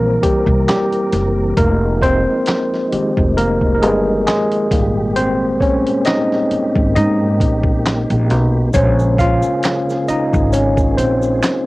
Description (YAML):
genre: R&B, neo-soul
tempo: 67 BPM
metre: 4/4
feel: swing 55% on 16ths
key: Bb dorian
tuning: A4 = 438 Hz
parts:
  - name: tine electric piano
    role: accompaniment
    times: 0.0-11.7 s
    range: Bb2 to F5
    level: -16 LUFS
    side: left 1 dB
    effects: fast stereo tremolo, cassette tape, plate reverb
  - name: tonewheel organ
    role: sustained chords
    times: 0.0-11.7 s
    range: Bb2 to Bb4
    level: -26 LUFS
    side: right 1 dB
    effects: slow rotary speaker, chorus vibrato, cassette tape
  - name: upright bass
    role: bass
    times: 0.0-11.4 s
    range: F1 to Ab2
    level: -18 LUFS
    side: equal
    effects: none
  - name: dusty soul sampler-style drum kit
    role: drums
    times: 0.2-11.7 s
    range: handclaps, hi-hat, kick drum, snare drum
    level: -19 LUFS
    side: equal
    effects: none
  - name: egg shaker and finger snaps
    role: percussion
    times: 8.7-11.7 s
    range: none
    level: -29 LUFS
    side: right 4 dB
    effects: none
room: light reverb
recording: home recording on cassette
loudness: -13 LUFS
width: side -20 dB against mid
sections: 0.0-11.7 A section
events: tine electric piano solo 0.0-11.7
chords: 0.0 C7; 1.6 Fm7; 4.7 Abmaj9; 8.7 Bbm9